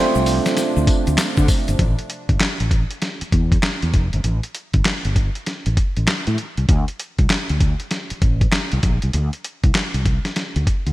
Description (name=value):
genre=R&B, new jack swing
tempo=98 BPM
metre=4/4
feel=swing 64% on 16ths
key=unclear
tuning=A4 = 440 Hz
part: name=mellow tine electric piano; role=accompaniment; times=0.0-1.8 s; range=A3 to D5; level=-21 LUFS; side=right 3 dB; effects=lush chorus
part: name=phased analog pad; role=sustained chords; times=0.0-1.8 s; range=C3 to D4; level=-30 LUFS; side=left 3 dB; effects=phaser, chorus
part: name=egg shaker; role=percussion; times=0.1-1.8 s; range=none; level=-37 LUFS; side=left 6 dB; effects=none
part: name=fretless electric bass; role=bass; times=0.2-10.9 s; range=F1 to D3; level=-20 LUFS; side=equal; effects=ensemble chorus
part: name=dusty soul sampler-style drum kit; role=drums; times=0.3-10.9 s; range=handclaps, hi-hat, kick drum, snare drum, tambourine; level=-19 LUFS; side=equal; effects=gated reverb
room=light reverb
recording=bright 1980s-style digital production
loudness=-17 LUFS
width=side -17 dB against mid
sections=0.0-1.8 A section; 1.8-10.9 B section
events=none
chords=0.0 Dm7; 1.8 A7(no3); 6.7 D5